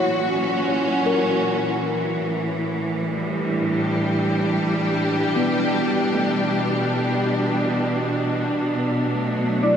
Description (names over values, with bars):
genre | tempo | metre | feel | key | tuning
ambient | 77 BPM | 4/4 | straight | unclear | A4 = 441 Hz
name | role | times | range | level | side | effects
clear studio string section | sustained chords | 0.0-9.8 s | A2 to G4 | -20 LUFS | equal | shimmer reverb
handpan | arpeggios | 0.0-9.8 s | A3 to C#5 | -27 LUFS | left 2 dB | shimmer reverb, diffuse ambient delay
warm velvety synth lead | melody | 9.6-9.8 s | D5 | -17 LUFS | left 2 dB | chorus, tremolo
room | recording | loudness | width
wet huge ambient reverb, RT60 8.4 s | none | -20 LUFS | side -8 dB against mid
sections
0.0-9.8 A section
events
fade-out on handpan 0.0-9.8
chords
0.0 F#7; 2.2 A7sus4; 5.3 Em7; 8.5 D6